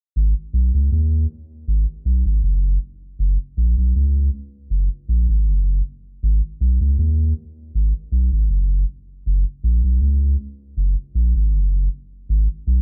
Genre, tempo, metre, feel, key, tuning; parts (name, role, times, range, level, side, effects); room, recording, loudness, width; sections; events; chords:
reggae; 79 BPM; 4/4; straight; G# minor; A4 = 440 Hz
warm sub bass; solo; 0.2-12.8 s; F#1 to D#2; -20 LUFS; equal
light reverb; -20 LUFS; mono
0.1-6.2 A section; 6.2-12.8 B section